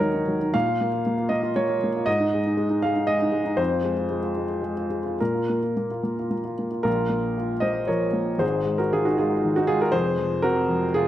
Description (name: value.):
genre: neoclassical minimalist piano.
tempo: 106-120 BPM.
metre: 3/4.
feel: rubato.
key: Bb minor.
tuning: A4 = 439 Hz.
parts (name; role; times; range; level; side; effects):
warm upright piano; solo; 0.0-11.1 s; F1 to F5; -21 LUFS; equal; slapback echo.
room: light reverb.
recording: dry, close 1970s-style studio recording.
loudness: -21 LUFS.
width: side -12 dB against mid.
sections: 0.0-6.9 A section; 6.9-11.1 B section.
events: none.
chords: 0.0 Ebm; 0.5 Bbm; 2.1 Ab5; 3.6 Fm; 5.2 Bb5; 6.9 Bbm; 8.4 Ab5; 9.9 Fm.